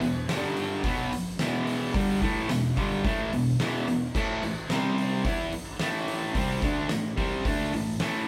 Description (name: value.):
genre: garage rock duo or trio.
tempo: 109 BPM.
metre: 4/4.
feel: straight.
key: unclear.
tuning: A4 = 440 Hz.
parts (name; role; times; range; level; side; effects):
fuzz guitar; riff; 0.0-8.3 s; E2 to E4; -29 LUFS; equal; distortion.
oversized low-tuned drum kit; drums; 0.0-8.1 s; crash cymbal, hi-hat, kick drum, snare drum; -34 LUFS; equal; none.
room: wet large studio reverb, RT60 0.9 s.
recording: band playing live in one room.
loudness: -28 LUFS.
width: mono.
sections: 0.0-8.3 A section.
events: none.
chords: 0.3 G5; 0.8 E5; 4.1 A5; 4.7 C5; 5.2 A5.